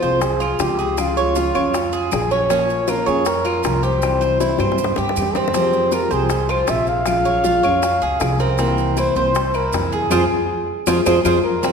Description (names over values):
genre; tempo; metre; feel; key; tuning
latin, Cuban son and guajira; 158 BPM; 4/4; straight; F harmonic minor; A4 = 441 Hz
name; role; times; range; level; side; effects
trumpet with bucket mute; melody; 0.0-11.7 s; F4 to F5; -21 LUFS; equal; none
nylon-string guitar; accompaniment; 0.0-11.7 s; C3 to G4; -24 LUFS; left 2 dB; none
Cuban tres; arpeggios; 0.0-11.7 s; C4 to Db5; -21 LUFS; right 4 dB; none
upright bass; bass; 0.0-11.4 s; Bb1 to G2; -25 LUFS; equal; none
bongos; percussion; 0.0-11.7 s; none; -26 LUFS; left 6 dB; none
maracas; percussion; 0.0-11.7 s; none; -34 LUFS; right 6 dB; none
claves; percussion; 0.4-11.3 s; none; -34 LUFS; left 5 dB; none
room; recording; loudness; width
wet concert hall reverb, RT60 1.9 s; recorded in a church or concert hall; -16 LUFS; side -6 dB against mid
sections
0.0-11.6 A section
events
drum fill 4.6-5.5, 10.5-11.6; band accent 10.1-11.6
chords
0.0 Fm; 1.0 Db; 2.5 Bbm; 4.0 C; 5.5 Fmadd9; 7.1 Bbm7; 8.6 C7; 10.1 Fm